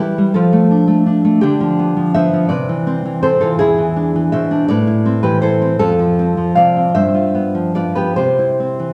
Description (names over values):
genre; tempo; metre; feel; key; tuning
romantic piece for solo classical guitar; 47-57 BPM (dotted quarters); 6/8; rubato; C major; A4 = 440 Hz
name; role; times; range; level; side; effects
nylon-string guitar; solo; 0.0-8.9 s; E2 to F5; -15 LUFS; equal; none
room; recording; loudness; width
wet recital hall reverb, RT60 1.5 s; recorded in a church or concert hall; -15 LUFS; mono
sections
0.0-8.9 A section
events
none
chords
0.3 Dm/F; 1.4 G7/D; 2.5 C; 3.6 E7; 4.7 Am; 5.8 F; 7.0 G7; 8.2 C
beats
0.33 | 1.42 2.50 | 3.60 4.70 | 5.80 6.96 | 8.18